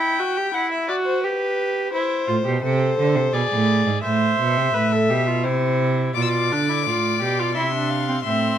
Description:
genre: classical, baroque-style fugue for string quartet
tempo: 86 BPM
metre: 3/4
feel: straight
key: A minor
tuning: A4 = 440 Hz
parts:
  - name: dark violin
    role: second line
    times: 0.0-8.6 s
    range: B4 to G5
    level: -24 LUFS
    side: left 4 dB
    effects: none
  - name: rich viola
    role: accompaniment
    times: 0.0-8.6 s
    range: C4 to C5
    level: -23 LUFS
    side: right 2 dB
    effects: none
  - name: rich cello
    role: bass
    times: 2.3-8.6 s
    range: G#2 to D3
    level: -22 LUFS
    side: right 4 dB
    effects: none
  - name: warm violin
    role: melody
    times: 6.1-8.6 s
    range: C6 to E6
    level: -25 LUFS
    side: left 12 dB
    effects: none
room: light reverb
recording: close, detailed microphones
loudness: -18 LUFS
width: side -10 dB against mid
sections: 0.0-6.2 A section; 6.2-8.6 B section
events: none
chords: 0.0 Em; 1.2 G; 1.9 Am; 3.3 G#(b5, no3); 4.0 Am; 5.4 C; 6.2 G7/B; 7.6 C

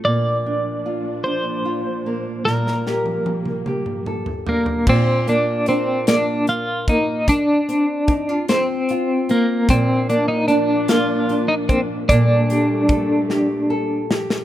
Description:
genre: six-eight pop ballad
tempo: 50 BPM (dotted quarters)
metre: 6/8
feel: straight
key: Bb major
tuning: A4 = 440 Hz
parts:
  - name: twelve-string electric guitar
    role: melody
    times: 0.0-14.1 s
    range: Bb3 to D5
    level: -19 LUFS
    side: equal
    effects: tremolo
  - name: nylon-string guitar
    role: accompaniment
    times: 0.0-14.4 s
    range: Bb2 to A4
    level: -21 LUFS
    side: equal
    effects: none
  - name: warm studio string section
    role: sustained chords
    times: 0.0-4.8, 9.7-14.4 s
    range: Bb2 to D4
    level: -30 LUFS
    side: left 1 dB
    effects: stereo widening
  - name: modern studio drum kit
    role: drums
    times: 2.5-14.4 s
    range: crash cymbal, hi-hat, kick drum, snare drum, toms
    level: -22 LUFS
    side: equal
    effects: none
room: small room ambience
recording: rough home demo mix, faint mains hum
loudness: -17 LUFS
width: side -12 dB against mid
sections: 0.0-4.9 A section; 4.9-14.4 B section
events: drum fill 2.5-4.9, 13.3-14.4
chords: 0.1 Bb; 2.5 Gmadd9/Bb; 7.3 F5; 9.7 Bb; 12.1 Gmadd9/Bb

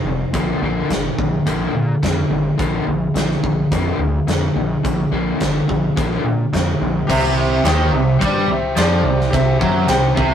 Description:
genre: classic rock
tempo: 106 BPM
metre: 4/4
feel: straight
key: C mixolydian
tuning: A4 = 441 Hz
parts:
  - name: overdriven semi-hollow guitar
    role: riff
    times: 0.0-10.3 s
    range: F2 to Bb3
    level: -20 LUFS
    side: left 1 dB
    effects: tremolo
  - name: gritty driven synth bass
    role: bass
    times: 0.0-10.3 s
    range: F1 to Bb2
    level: -22 LUFS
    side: equal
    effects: none
  - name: big rock drum kit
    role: drums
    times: 0.3-10.3 s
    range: crash cymbal, hi-hat, kick drum, ride cymbal, snare drum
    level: -22 LUFS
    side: equal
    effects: none
  - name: bright upright piano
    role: accompaniment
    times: 7.1-10.3 s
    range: G4 to G5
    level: -20 LUFS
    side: left 3 dB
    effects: none
  - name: overdriven electric guitar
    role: riff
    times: 7.1-10.3 s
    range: C3 to G3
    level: -19 LUFS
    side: right 5 dB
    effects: none
  - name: group handclap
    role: percussion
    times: 7.7-10.0 s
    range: none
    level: -31 LUFS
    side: right 5 dB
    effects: none
room: moderate studio reverb, RT60 0.5 s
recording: rough rehearsal-room recording, warm saturation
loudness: -15 LUFS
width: side -9 dB against mid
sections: 0.0-7.1 A section; 7.1-10.3 B section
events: none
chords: 0.3 Bb; 7.1 C

